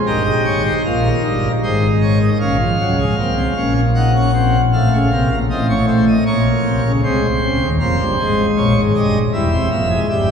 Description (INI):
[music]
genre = classical, baroque-style 4-part fugue for pipe organ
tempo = 78 BPM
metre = 3/4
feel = straight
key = Bb minor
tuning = A4 = 441 Hz
[part]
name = pipe organ, plenum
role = solo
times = 0.1-10.3 s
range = C1 to Gb5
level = -14 LUFS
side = equal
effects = none
[sound]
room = wet cathedral reverb, RT60 5.3 s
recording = heard from further back in the room, studio reverb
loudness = -14 LUFS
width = side -7 dB against mid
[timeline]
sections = 0.0-2.4 A section; 2.4-10.3 B section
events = none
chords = 0.1 Eb/G; 1.6 Ab; 2.4 Bbm; 3.9 Cm7b5/Bb; 4.7 F/A; 6.3 Bbm; 7.0 Fm/C; 8.6 Gdim; 9.3 C/E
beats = | 0.06 0.84 1.62 | 2.40 3.17 3.95 | 4.72 5.49 6.26 | 7.03 7.80 8.56 | 9.33 10.10